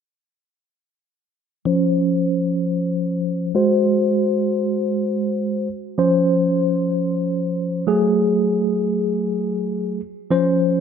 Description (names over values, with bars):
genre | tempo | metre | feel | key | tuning
pop | free time | none | none | Db major | A4 = 440 Hz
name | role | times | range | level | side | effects
bright tine electric piano | accompaniment | 1.7-10.8 s | F3 to C5 | -18 LUFS | equal | medium stereo tremolo, low-pass filter
room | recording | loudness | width
light reverb, digital ambience | none | -18 LUFS | side -7 dB against mid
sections
1.7-10.8 A section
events
filter sweep on tine electric piano 1.7-10.8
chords
1.7 Dbmaj7; 3.6 Ab7; 6.0 Dbmaj7; 7.9 Gbmadd9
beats
free time